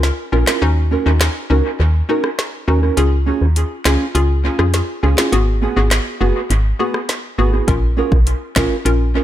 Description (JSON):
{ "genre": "dancehall", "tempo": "102 BPM", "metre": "4/4", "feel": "straight", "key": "Eb minor", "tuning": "A4 = 440 Hz", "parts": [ { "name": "hollow square pluck", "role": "accompaniment", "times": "0.0-9.2 s", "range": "Cb4 to Bb4", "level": "-21 LUFS", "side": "left 3 dB", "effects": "chorus, dub echo" }, { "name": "woody FM bass", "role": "bass", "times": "0.0-9.2 s", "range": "Gb1 to F2", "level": "-15 LUFS", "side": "equal", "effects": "none" }, { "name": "afro-pop drum kit", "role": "drums", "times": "0.0-9.0 s", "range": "handclaps, hi-hat, kick drum, rim click, snare drum", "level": "-21 LUFS", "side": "equal", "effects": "dub echo" }, { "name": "nylon-string guitar", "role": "arpeggios", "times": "0.3-9.2 s", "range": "Cb4 to Bb4", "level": "-21 LUFS", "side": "right 7 dB", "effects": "none" } ], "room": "little or no reverb", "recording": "echo-heavy mix", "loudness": "-14 LUFS", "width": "side -12 dB against mid", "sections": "0.0-9.2 A section", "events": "break 0.0-7.7", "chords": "0.0 Bbm; 0.6 Ebm7; 3.0 Db; 5.3 Abm7; 7.7 Bbm", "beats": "0.03 | 0.62 1.21 1.80 2.38 | 2.97 3.56 4.15 4.74 | 5.33 5.92 6.50 7.09 | 7.68 8.27 8.86" }